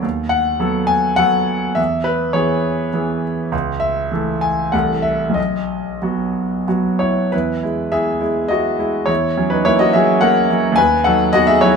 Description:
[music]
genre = classical, romantic character piece for solo piano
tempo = 90-109 BPM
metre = 3/4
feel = rubato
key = E major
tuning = A4 = 440 Hz
[part]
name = clear grand piano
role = solo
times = 0.0-11.8 s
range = B1 to G#5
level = -15 LUFS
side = equal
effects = none
[sound]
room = moderate stone room reverb, RT60 1.3 s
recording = minimal, uncompressed stereo recording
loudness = -15 LUFS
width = side -5 dB against mid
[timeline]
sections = 0.0-7.3 A section; 7.3-11.8 B section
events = none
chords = 0.0 B7/D#; 1.8 E; 3.5 A/C#; 4.7 Am/C; 5.4 B; 7.3 E; 9.1 F#7/E; 10.8 B/D#

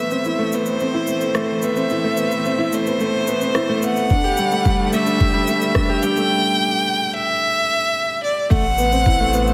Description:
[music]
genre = piano and strings electronica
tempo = 109 BPM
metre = 4/4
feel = straight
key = A dorian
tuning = A4 = 440 Hz
[part]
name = clear violin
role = melody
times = 0.0-9.5 s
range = C5 to G5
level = -23 LUFS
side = equal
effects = tape echo
[part]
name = clear string quartet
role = sustained chords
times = 0.0-9.5 s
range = D2 to C5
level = -31 LUFS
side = equal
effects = sidechain pumping
[part]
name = warm grand piano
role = riff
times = 0.0-9.5 s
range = G3 to G4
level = -23 LUFS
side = equal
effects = tape echo
[part]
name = electronic shaker and rim click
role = drums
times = 0.1-9.5 s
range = none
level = -30 LUFS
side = equal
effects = overdrive
[part]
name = electronic kick drum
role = drums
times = 4.1-9.2 s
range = none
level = -21 LUFS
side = equal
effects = none
[part]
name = round analog bass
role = bass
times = 8.5-9.5 s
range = A1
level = -24 LUFS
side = equal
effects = sidechain pumping
[sound]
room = moderate lush hall reverb, RT60 1.9 s, small room ambience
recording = none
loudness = -19 LUFS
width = mono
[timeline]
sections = 0.0-8.5 A section; 8.5-9.5 B section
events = build-up 0.0-8.5; drop 8.5-9.5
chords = 0.0 Amadd9; 4.1 Dsus4; 8.5 Amadd9

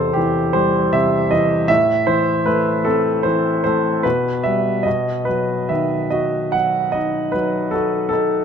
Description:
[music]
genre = classical, lyrical solo piano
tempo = 71-80 BPM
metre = 3/4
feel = rubato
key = unclear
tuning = A4 = 440 Hz
[part]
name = clear concert grand piano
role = solo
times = 0.0-8.4 s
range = E2 to F#5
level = -16 LUFS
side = equal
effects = none
[sound]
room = light reverb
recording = close, detailed microphones, lossy compression artefacts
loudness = -16 LUFS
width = side -7 dB against mid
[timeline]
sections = 0.0-8.4 A section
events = none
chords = 0.0 C/E; 1.7 Am; 4.1 Em/B; 4.9 B

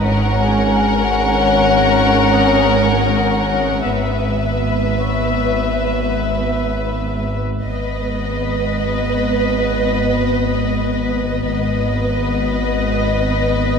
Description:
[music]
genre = cinematic, suspense film score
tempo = 79 BPM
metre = 5/4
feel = straight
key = G# minor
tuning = A4 = 439 Hz
[part]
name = vibraphone with medium hard mallets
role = texture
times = 0.0-13.8 s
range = G#4 to D#6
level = -28 LUFS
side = right 2 dB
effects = none
[part]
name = dark studio violin section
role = melody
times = 0.1-13.8 s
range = D#5 to F#5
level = -22 LUFS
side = left 3 dB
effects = none
[part]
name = rich studio violin section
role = second line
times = 0.1-13.8 s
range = A#4 to B4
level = -22 LUFS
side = left 2 dB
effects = none
[part]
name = rich studio viola section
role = accompaniment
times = 0.1-13.8 s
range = B3 to C#4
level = -21 LUFS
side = equal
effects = none
[part]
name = dark studio cello section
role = bass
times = 0.1-13.8 s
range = G#2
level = -23 LUFS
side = right 2 dB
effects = none
[part]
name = dark studio double bass section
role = bass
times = 0.1-13.8 s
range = G#1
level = -23 LUFS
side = right 1 dB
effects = none
[part]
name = warm sub bass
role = drone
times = 0.1-13.8 s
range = G#1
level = -26 LUFS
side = equal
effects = none
[sound]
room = wet church reverb, RT60 3.5 s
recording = none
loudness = -15 LUFS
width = side -6 dB against mid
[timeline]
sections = 0.0-13.8 A section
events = none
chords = 0.1 F#/G#; 3.8 E/G#

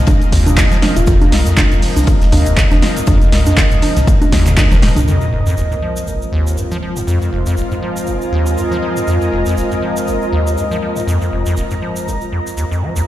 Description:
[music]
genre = acid house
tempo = 120 BPM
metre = 4/4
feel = swing 56% on 16ths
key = F minor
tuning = A4 = 441 Hz
[part]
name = dark analog pad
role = sustained chords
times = 0.0-13.0 s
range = Ab3 to F5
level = -25 LUFS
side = right 1 dB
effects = wide subtle chorus, sidechain pumping
[part]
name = acid bass, square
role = riff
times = 0.0-13.0 s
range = F1 to F3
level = -18 LUFS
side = equal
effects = cassette tape, digital delay
[part]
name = warm sub bass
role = bass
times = 0.0-5.1 s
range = Eb1 to C2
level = -15 LUFS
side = equal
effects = tube saturation, sidechain pumping
[part]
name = granular cloud pad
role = texture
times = 0.0-13.1 s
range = F4 to Bb5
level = -22 LUFS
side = equal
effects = built-in reverb, sidechain pumping
[part]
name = damped 70s drum kit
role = drums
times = 0.1-5.0 s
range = hi-hat, ride cymbal, snare drum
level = -31 LUFS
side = left 4 dB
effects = none
[part]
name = electronic kick drum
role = drums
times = 0.1-4.7 s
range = none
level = -13 LUFS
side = equal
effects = none
[part]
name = punchy analog drum machine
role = drums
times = 0.1-5.1 s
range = congas, handclaps, hi-hat, snare drum, toms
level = -17 LUFS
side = right 1 dB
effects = overdrive
[part]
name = egg shaker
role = percussion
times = 0.1-13.1 s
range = none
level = -32 LUFS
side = right 2 dB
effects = none
[part]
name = bell-like FM electric piano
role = melody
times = 1.0-1.5 s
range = F4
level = -24 LUFS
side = left 1 dB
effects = chorus, cassette tape, ping-pong delay
[part]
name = sub drop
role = sound effects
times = 5.1-7.1 s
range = none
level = -22 LUFS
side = equal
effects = none
[sound]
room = light reverb, small room ambience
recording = played on a big sound system in a bare room, large studio reverb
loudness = -12 LUFS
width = side -14 dB against mid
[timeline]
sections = 0.0-5.1 A section; 5.1-13.1 B section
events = drop 0.0-5.1; drum fill 4.1-5.1; impact 5.1-7.1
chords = 0.0 Fm

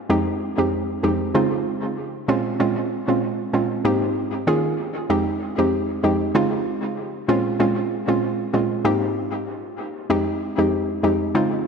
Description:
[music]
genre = afrobeats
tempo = 96 BPM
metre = 4/4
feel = swing 55% on 16ths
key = unclear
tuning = A4 = 440 Hz
[part]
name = hollow square pluck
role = solo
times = 0.1-11.7 s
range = F2 to Ab4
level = -20 LUFS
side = right 1 dB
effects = chorus, diffuse ambient delay
[sound]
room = wet plate reverb, RT60 2.9 s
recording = dreamy mix soaked in reverb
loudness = -20 LUFS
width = side -6 dB against mid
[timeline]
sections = 0.0-5.1 A section; 5.1-11.7 B section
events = none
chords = 0.1 Fm7; 1.3 Dbmaj7; 2.3 Bbm7; 3.8 Abmaj7; 4.5 Eb9sus4; 5.1 Fm7; 6.3 Dbmaj7; 7.3 Bbm7; 8.8 Abmaj7; 10.1 Fm7

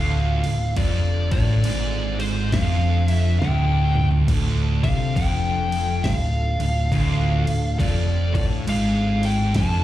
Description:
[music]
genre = stoner and doom metal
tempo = 68 BPM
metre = 4/4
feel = swing 63% on 8ths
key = D minor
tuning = A4 = 437 Hz
[part]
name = fuzz lead guitar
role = melody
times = 0.0-9.8 s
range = C5 to A5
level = -28 LUFS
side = left 1 dB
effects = distortion, slapback echo
[part]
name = string machine, full ensemble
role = sustained chords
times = 0.0-9.8 s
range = D3 to A4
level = -36 LUFS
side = equal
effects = ensemble chorus
[part]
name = fuzz guitar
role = riff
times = 0.0-9.8 s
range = D2 to C3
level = -26 LUFS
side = left 5 dB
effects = distortion, slapback echo
[part]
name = thick fuzz guitar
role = riff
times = 0.0-9.8 s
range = D2 to C3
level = -26 LUFS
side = right 5 dB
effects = distortion
[part]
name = overdriven picked electric bass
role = bass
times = 0.0-9.8 s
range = D1 to C2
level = -22 LUFS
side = equal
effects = none
[part]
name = dubstep drum kit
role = drums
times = 0.4-9.8 s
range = crash cymbal, kick drum, snare drum, toms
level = -27 LUFS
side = equal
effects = none
[sound]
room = light reverb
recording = live gig heard through the venue's PA, club reverb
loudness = -18 LUFS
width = side -14 dB against mid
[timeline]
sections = 0.0-9.8 A section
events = drum fill 3.4-4.3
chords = 0.0 Dm

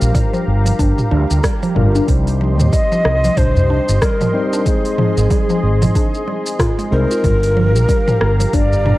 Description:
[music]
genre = organic downtempo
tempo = 93 BPM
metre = 4/4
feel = swing 59% on 16ths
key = G phrygian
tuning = A4 = 440 Hz
[part]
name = breathy mellow Native American-style cedar flute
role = melody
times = 0.0-9.0 s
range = Ab4 to Eb5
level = -20 LUFS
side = equal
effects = tape echo
[part]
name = mellow tine electric piano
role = accompaniment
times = 0.0-9.0 s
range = G3 to C5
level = -24 LUFS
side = left 2 dB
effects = medium stereo tremolo, sidechain pumping, digital delay
[part]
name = warm analog pad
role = sustained chords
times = 0.0-9.0 s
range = G4 to C6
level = -26 LUFS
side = right 1 dB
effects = chorus, sidechain pumping
[part]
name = mallet-like synth pluck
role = arpeggios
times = 0.0-9.0 s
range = F3 to F4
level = -22 LUFS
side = equal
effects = chorus, phaser, digital delay
[part]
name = fretless electric bass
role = bass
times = 0.0-8.9 s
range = G1 to Eb2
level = -15 LUFS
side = equal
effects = lush chorus, sidechain pumping
[part]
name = deep house drum kit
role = drums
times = 0.0-9.0 s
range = hi-hat, rim click, shaker, toms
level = -21 LUFS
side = equal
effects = none
[part]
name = electronic kick drum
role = drums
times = 0.1-8.7 s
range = none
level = -17 LUFS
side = equal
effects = none
[part]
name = udu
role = percussion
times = 3.6-3.7, 8.7-8.8 s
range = none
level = -17 LUFS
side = equal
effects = none
[sound]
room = light reverb, digital ambience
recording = worn, warbling old tape, cassette tape, warbly pitch drift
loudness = -13 LUFS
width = side -17 dB against mid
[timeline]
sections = 0.0-9.0 A section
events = none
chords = 0.0 Gm7; 2.1 Cm; 4.7 Ab; 7.2 Gm7

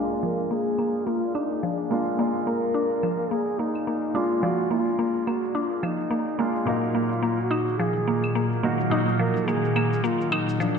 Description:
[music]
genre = organic downtempo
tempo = 107 BPM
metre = 4/4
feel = swing 59% on 16ths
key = unclear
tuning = A4 = 438 Hz
[part]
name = felt-muted upright piano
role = accompaniment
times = 0.0-10.8 s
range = Bb2 to D5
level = -29 LUFS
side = right 2 dB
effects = ping-pong delay
[part]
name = ethereal airy pad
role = sustained chords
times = 0.0-10.8 s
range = Bb2 to F5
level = -30 LUFS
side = equal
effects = ensemble chorus, built-in reverb, phaser
[part]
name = mallet-like synth pluck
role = arpeggios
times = 0.0-10.8 s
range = F3 to Eb4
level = -27 LUFS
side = equal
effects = chorus, ping-pong delay
[part]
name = shaker and claves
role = drums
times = 0.1-10.7 s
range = none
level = -32 LUFS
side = left 3 dB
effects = none
[part]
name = dark duduk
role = melody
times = 0.2-10.8 s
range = D4 to Bb4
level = -28 LUFS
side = left 1 dB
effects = ping-pong delay
[sound]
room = wet lush hall reverb, RT60 1.8 s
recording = bright 1980s-style digital production, low-pass filter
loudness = -22 LUFS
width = side -6 dB against mid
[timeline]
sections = 0.0-10.8 A section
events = filter sweep on synth pluck 0.0-10.8; filter sweep on ambient pad 0.0-10.8; filter sweep 0.0-10.8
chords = 0.0 Bb7; 6.7 Ebm/Bb

